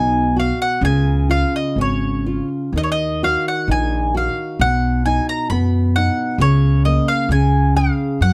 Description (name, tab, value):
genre	fado-style ballad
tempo	66 BPM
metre	2/4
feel	rubato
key	unclear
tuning	A4 = 439 Hz
part	mandolin	melody	0.0-8.3 s	C#5 to B5	-23 LUFS	equal	none
part	nylon-string guitar	accompaniment	0.0-8.3 s	B2 to G#4	-24 LUFS	equal	none
part	upright bass	bass	0.0-8.3 s	G#1 to F#2	-20 LUFS	equal	none
room	little or no reverb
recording	dark, warm production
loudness	-18 LUFS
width	mono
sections	0.0-8.3 A section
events	none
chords	0.0 B; 0.8 C#; 2.7 D#m; 4.6 B; 6.4 C#69; 7.3 C#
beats	| 0.82 1.76 | 2.74 3.69 | 4.60 5.50 | 6.39 7.29 | 8.21